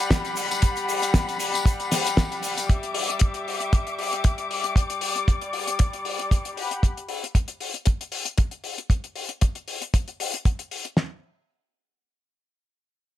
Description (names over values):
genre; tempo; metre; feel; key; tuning
nu-disco, nu disco; 116 BPM; 4/4; straight; unclear; A4 = 440 Hz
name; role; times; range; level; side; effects
muted studio string section; sustained chords; 0.0-6.8 s; G3 to D6; -27 LUFS; left 3 dB; sidechain pumping, low-pass filter
tube shaker; percussion; 0.0-2.7 s; none; -36 LUFS; right 4 dB; none
damped 70s drum kit; drums; 0.1-11.1 s; kick drum, snare drum; -19 LUFS; equal; studio ambience
damped 70s drum kit; drums; 0.1-10.9 s; hi-hat, snare drum, tambourine; -28 LUFS; left 3 dB; studio ambience
room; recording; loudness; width
studio reverb; none; -22 LUFS; side -13 dB against mid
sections
0.0-11.0 A section; 11.0-13.2 B section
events
none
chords
0.0 Gmaj7; 2.7 Em7; 6.6 Gmaj7; 11.0 N.C.